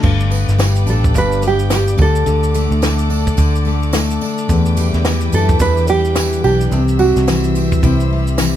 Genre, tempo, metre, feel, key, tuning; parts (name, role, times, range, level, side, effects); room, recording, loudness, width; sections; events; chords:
acoustic pop; 108 BPM; 4/4; swing 60% on 16ths; G major; A4 = 440 Hz
picked steel-string acoustic guitar; accompaniment; 0.0-8.6 s; E2 to D4; -19 LUFS; left 5 dB
clear studio string section; sustained chords; 0.0-8.6 s; A4 to E6; -28 LUFS; left 1 dB
vintage muted fingered electric bass; bass; 0.0-8.6 s; G1 to F#2; -16 LUFS; right 1 dB
compact cocktail drum kit; drums; 0.0-8.5 s; crash cymbal, kick drum, shaker, snare drum; -18 LUFS; equal
tambourine; percussion; 0.0-8.5 s; -30 LUFS; right 7 dB
nylon-string guitar; melody; 0.9-8.6 s; E4 to B4; -18 LUFS; right 3 dB
little or no reverb; -12 LUFS; side -11 dB against mid
0.0-8.6 A section
0.0 G; 2.0 D; 4.5 Em7; 6.7 C